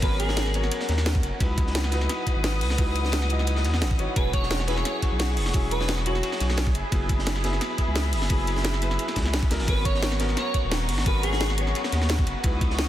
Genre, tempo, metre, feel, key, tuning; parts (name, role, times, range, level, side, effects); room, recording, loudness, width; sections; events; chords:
liquid drum and bass; 174 BPM; 4/4; straight; G# minor; A4 = 441 Hz
airy dreamy lead; melody; 0.0-0.5, 4.2-6.4, 9.7-11.5 s; F#4 to C#5; -31 LUFS; right 1 dB; chorus, dub echo
warm grand piano; accompaniment; 0.0-12.9 s; F#3 to D#5; -32 LUFS; left 1 dB; dub echo
muted chamber string section; sustained chords; 0.0-12.9 s; B3 to D#6; -32 LUFS; left 1 dB; vintage 12-bit sampler grit
saturated sub bass; bass; 0.0-12.9 s; D#1 to E2; -26 LUFS; equal; tube saturation
crunchy breakbeat drum kit; drums; 0.0-12.9 s; hi-hat, ride cymbal, snare drum; -34 LUFS; equal; high-pass filter on cymbals, high-pass filter on hats, high-pass filter on snare, high-pass filter on room
drum and bass drum kit; drums; 0.0-12.9 s; hi-hat, snare drum; -31 LUFS; equal
electronic kick drum; drums; 0.0-12.7 s; -25 LUFS; equal
light reverb, studio ambience; dense, heavily limited modern master; -22 LUFS; side -12 dB against mid
0.0-12.9 A section
0.0 G#m11; 1.4 C#m11; 4.2 E69; 6.8 F#9sus4; 9.7 G#m11